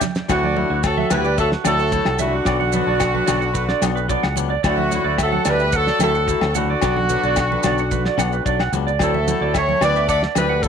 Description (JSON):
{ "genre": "highlife guitar band", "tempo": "110 BPM", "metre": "4/4", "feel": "straight", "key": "D major", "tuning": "A4 = 440 Hz", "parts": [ { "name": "clean electric guitar", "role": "accompaniment", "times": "0.0-10.7 s", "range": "F#3 to E4", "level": "-27 LUFS", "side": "left 15 dB", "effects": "none" }, { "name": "damped 70s drum kit", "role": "drums", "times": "0.0-10.7 s", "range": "kick drum, snare drum", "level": "-25 LUFS", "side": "equal", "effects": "none" }, { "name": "congas", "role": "percussion", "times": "0.0-10.5 s", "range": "none", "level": "-30 LUFS", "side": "right 11 dB", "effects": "none" }, { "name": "maracas", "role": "percussion", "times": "0.0-10.7 s", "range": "none", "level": "-31 LUFS", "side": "right 16 dB", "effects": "none" }, { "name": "clear horn section", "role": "melody", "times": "0.3-10.7 s", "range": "D4 to D5", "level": "-21 LUFS", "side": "equal", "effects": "none" }, { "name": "clear tenor saxophone", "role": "second line", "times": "0.3-10.7 s", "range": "D3 to B3", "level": "-29 LUFS", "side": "left 11 dB", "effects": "none" }, { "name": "electric guitar through a small old amp", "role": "arpeggios", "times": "0.3-10.6 s", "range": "F#4 to F#5", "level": "-24 LUFS", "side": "right 12 dB", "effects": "wide subtle chorus" }, { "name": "fingered electric bass", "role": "bass", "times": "0.3-10.7 s", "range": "B1 to D2", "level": "-23 LUFS", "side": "equal", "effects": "none" }, { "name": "agogo bells", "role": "percussion", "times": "0.3-10.5 s", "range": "none", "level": "-29 LUFS", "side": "left 14 dB", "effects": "none" } ], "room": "moderate spring reverb, RT60 1.6 s, studio reverb", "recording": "1960s-style stereo with parts hard left and right", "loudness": "-16 LUFS", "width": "side -7 dB against mid", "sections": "0.3-10.7 A section", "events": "drum fill 0.0", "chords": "0.3 Dadd9; 2.5 Bm; 4.6 Dadd9; 6.8 Bm; 9.0 Dadd9", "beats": "| 0.29 0.83 1.38 1.92 | 2.46 3.01 3.56 4.10 | 4.64 5.19 5.73 6.28 | 6.82 7.37 7.91 8.45 | 9.00 9.54 10.09 10.63" }